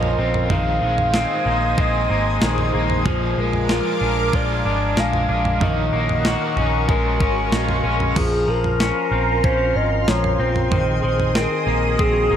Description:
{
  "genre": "dream pop",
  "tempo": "94 BPM",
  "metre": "4/4",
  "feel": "straight",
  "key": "Bb minor",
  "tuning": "A4 = 441 Hz",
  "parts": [
    { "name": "warbly nostalgic lead", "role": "melody", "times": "0.0-12.4 s", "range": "Ab4 to F5", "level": "-24 LUFS", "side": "equal", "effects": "chorus, digital delay" },
    { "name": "overdriven semi-hollow guitar", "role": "accompaniment", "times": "0.0-8.2 s", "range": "Bb2 to Ab4", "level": "-28 LUFS", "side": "right 2 dB", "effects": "tremolo, wide subtle chorus" },
    { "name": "lush unison pad", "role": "sustained chords", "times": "0.0-12.4 s", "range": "Ab4 to Eb6", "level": "-26 LUFS", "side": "equal", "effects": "chorus, phaser" },
    { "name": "electric guitar at the edge of break-up", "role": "arpeggios", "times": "0.0-12.4 s", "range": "Eb3 to Gb4", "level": "-24 LUFS", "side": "left 2 dB", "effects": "lush chorus, digital delay" },
    { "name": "vintage muted picked electric bass", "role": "bass", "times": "0.0-12.4 s", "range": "Ab1 to Bb1", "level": "-23 LUFS", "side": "equal", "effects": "none" },
    { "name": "crisp 8-bit digital drum machine", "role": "drums", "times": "0.0-12.1 s", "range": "crash cymbal, kick drum, snare drum, toms", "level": "-23 LUFS", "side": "right 1 dB", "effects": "overdrive" }
  ],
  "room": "moderate plate reverb, RT60 1.2 s, digital ambience",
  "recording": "none",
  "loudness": "-17 LUFS",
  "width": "side -9 dB against mid",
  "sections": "0.0-8.2 A section; 8.2-12.4 A section",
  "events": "none",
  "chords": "0.0 Bbmadd9; 0.5 Ab/Bb; 3.1 Bb7; 5.6 Ebm7/Bb; 6.9 Bbm7; 8.2 Bbmadd9; 10.7 Ab/Bb"
}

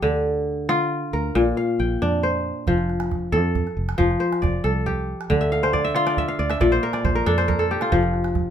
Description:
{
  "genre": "west african traditional, West African string and xylophone music",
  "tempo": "91 BPM (dotted quarters)",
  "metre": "12/8",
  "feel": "straight",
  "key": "F major",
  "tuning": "A4 = 439 Hz",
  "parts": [
    { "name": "kora", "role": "arpeggios", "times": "0.0-8.5 s", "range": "Bb2 to G5", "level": "-21 LUFS", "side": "left 1 dB", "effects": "none" },
    { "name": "fingered electric bass", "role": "bass", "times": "0.0-8.5 s", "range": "F1 to D3", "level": "-25 LUFS", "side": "equal", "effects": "none" },
    { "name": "calabash", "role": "percussion", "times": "2.7-8.5 s", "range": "none", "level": "-28 LUFS", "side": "right 4 dB", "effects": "none" }
  ],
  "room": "moderate studio reverb, RT60 0.6 s",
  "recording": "minimal, uncompressed stereo recording",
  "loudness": "-19 LUFS",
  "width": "side -9 dB against mid",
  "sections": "0.0-8.5 A section",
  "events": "kora fill 5.4-7.9",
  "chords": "0.0 Dm; 1.4 Bb; 2.7 F; 5.3 Dm; 6.6 Bb; 7.9 F"
}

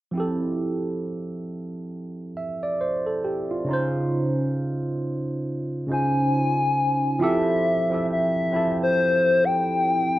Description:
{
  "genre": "R&B",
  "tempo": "68 BPM",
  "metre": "4/4",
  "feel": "swing 60% on 16ths",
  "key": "F major",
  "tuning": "A4 = 440 Hz",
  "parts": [
    { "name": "barky tine electric piano", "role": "accompaniment", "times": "0.1-10.2 s", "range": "Db3 to E5", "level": "-24 LUFS", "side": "right 1 dB", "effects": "phaser, plate reverb" },
    { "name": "hollow clarinet-like synth lead", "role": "melody", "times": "5.9-10.2 s", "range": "C5 to Ab5", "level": "-21 LUFS", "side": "left 2 dB", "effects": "chorus, plate reverb" }
  ],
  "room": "moderate studio reverb, RT60 0.7 s",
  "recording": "dark, warm production",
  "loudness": "-21 LUFS",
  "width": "side -15 dB against mid",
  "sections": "0.2-7.2 A section; 7.2-10.2 B section",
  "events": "none",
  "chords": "0.2 Fmaj9; 3.7 Dbmaj9; 7.2 Fmaj9"
}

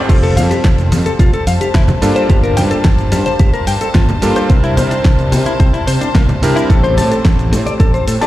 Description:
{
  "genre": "nu-disco, nu disco",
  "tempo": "109 BPM",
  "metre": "4/4",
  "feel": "straight",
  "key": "F major",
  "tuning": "A4 = 444 Hz",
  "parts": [
    { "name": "bright electric grand piano", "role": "accompaniment", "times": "0.0-8.3 s", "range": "G3 to A5", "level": "-19 LUFS", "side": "right 1 dB", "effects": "sidechain pumping, analog delay" },
    { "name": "rich chamber string section", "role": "sustained chords", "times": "0.0-8.3 s", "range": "G4 to A5", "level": "-23 LUFS", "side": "left 1 dB", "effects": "sidechain pumping" },
    { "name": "direct-recorded clean electric guitar", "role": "riff", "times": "0.0-8.3 s", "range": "C3 to A5", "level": "-19 LUFS", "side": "left 4 dB", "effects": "lush chorus, analog delay" },
    { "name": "fuzz fingered electric bass", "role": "bass", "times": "0.1-8.2 s", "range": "F1 to C3", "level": "-16 LUFS", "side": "equal", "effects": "overdrive" },
    { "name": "electronic kick drum", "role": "drums", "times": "0.1-7.9 s", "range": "none", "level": "-12 LUFS", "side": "equal", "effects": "none" },
    { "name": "pop drum kit", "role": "drums", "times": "0.1-8.3 s", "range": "crash cymbal, hi-hat, shaker, snare drum", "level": "-22 LUFS", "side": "equal", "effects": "none" },
    { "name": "congas", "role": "percussion", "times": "0.4-7.8 s", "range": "none", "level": "-20 LUFS", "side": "right 2 dB", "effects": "none" }
  ],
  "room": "light reverb",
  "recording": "played on a big sound system in a bare room, large studio reverb",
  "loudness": "-10 LUFS",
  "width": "side -15 dB against mid",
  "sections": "0.0-8.3 A section",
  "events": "none",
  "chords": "0.1 F; 2.0 Gm7; 4.5 C7; 6.7 Am7"
}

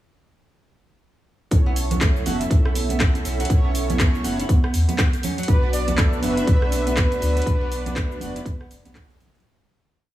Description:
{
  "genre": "afro house",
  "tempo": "121 BPM",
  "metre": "4/4",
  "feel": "swing 60% on 16ths",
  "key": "B minor",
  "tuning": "A4 = 441 Hz",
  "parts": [
    { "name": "mellow synth brass", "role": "stabs", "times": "1.5-8.4 s", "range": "C#4 to E5", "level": "-30 LUFS", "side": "right 2 dB", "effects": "chorus, sidechain pumping, tape echo" },
    { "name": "round analog bass", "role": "bass", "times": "1.5-9.4 s", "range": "F#1 to E2", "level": "-25 LUFS", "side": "equal", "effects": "sidechain pumping" },
    { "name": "afro-pop drum kit", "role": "drums", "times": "1.5-9.5 s", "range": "handclaps, hi-hat, rim click, shaker", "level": "-28 LUFS", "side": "equal", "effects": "overdrive" },
    { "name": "electronic kick drum", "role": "drums", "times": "1.5-9.1 s", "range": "none", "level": "-19 LUFS", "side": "equal", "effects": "none" },
    { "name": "congas", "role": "percussion", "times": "1.5-9.3 s", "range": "none", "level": "-28 LUFS", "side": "right 2 dB", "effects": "none" },
    { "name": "flamenco guitar", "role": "arpeggios", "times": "1.7-9.4 s", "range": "F#3 to A4", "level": "-33 LUFS", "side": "right 1 dB", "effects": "sidechain pumping, tape echo" },
    { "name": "trumpet with bucket mute", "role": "melody", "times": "5.5-8.9 s", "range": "A4 to D5", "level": "-28 LUFS", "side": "equal", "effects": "tape echo" },
    { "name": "warm analog pad", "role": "sustained chords", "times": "5.5-9.4 s", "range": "F#3 to D4", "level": "-32 LUFS", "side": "left 1 dB", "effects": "chorus, tremolo, sidechain pumping" }
  ],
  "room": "digital ambience",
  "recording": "small room ambience",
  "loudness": "-18 LUFS",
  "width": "side -14 dB against mid",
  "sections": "1.5-9.4 drop",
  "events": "drop 1.5-9.4; fade-out 6.8-9.4",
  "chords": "1.5 A; 5.5 Bm"
}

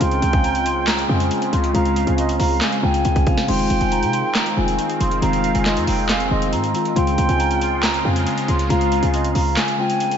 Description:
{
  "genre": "hip hop, trap",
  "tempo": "138 BPM",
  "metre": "4/4",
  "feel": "half-time",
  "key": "unclear",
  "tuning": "A4 = 440 Hz",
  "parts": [
    { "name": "vibraphone with medium mallets", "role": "melody", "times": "0.0-10.2 s", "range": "F5 to C6", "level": "-24 LUFS", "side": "right 1 dB", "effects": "low-pass filter, analog delay" },
    { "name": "jazz flute", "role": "second line", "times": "0.0-10.2 s", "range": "Eb5 to Ab5", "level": "-26 LUFS", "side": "right 5 dB", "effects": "analog delay" },
    { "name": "soft electric-piano-like synth keys", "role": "accompaniment", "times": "0.0-10.2 s", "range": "Db3 to Ab4", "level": "-23 LUFS", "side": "left 3 dB", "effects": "chorus, low-pass filter" },
    { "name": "sweeping resonant pad", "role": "sustained chords", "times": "0.0-10.2 s", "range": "Db3 to F4", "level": "-26 LUFS", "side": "right 1 dB", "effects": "chorus" },
    { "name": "short 808-style bass", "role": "bass", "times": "0.0-9.6 s", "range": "F1 to C3", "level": "-22 LUFS", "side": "equal", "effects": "none" },
    { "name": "trap drum kit", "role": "drums", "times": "0.0-10.2 s", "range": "crash cymbal, handclaps, hi-hat, kick drum, snare drum", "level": "-24 LUFS", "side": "equal", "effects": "overdrive, vintage 12-bit sampler grit" }
  ],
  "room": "wet church reverb, RT60 3.5 s",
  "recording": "dreamy mix soaked in reverb, nothing above 7.7 kHz",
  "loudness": "-16 LUFS",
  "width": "side -8 dB against mid",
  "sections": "0.0-10.2 A section",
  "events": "drum fill 3.0-3.5; kick muted 9.6-10.2",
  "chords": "0.0 Dbmaj7; 3.5 Fm7; 7.0 Dbmaj7"
}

